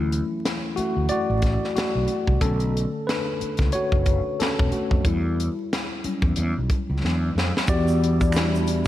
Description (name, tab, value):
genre	R&B, neo-soul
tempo	91 BPM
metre	4/4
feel	swing 59% on 16ths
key	E dorian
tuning	A4 = 441 Hz
part	mellow tine electric piano	accompaniment	0.0-8.9 s	D3 to D5	-25 LUFS	left 1 dB	medium stereo tremolo
part	fretless electric bass	bass	0.0-8.8 s	E1 to F2	-24 LUFS	equal	none
part	tight funk drum kit	drums	0.1-8.9 s	hi-hat, kick drum, snare drum	-25 LUFS	equal	none
part	hollow soft pad	sustained chords	7.9-8.9 s	G3 to E4	-29 LUFS	right 2 dB	chorus
part	tube shaker and finger snaps	percussion	7.7-8.9 s	none	-36 LUFS	right 4 dB	none
room	light reverb, small room ambience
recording	vinyl crackle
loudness	-21 LUFS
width	side -14 dB against mid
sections	0.0-7.7 A section; 7.7-8.9 B section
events	tine electric piano solo 0.0-7.7; drum fill 7.0-7.7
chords	0.0 Dmaj9; 2.4 Bm9; 5.0 Em69; 7.0 E9; 7.7 Em9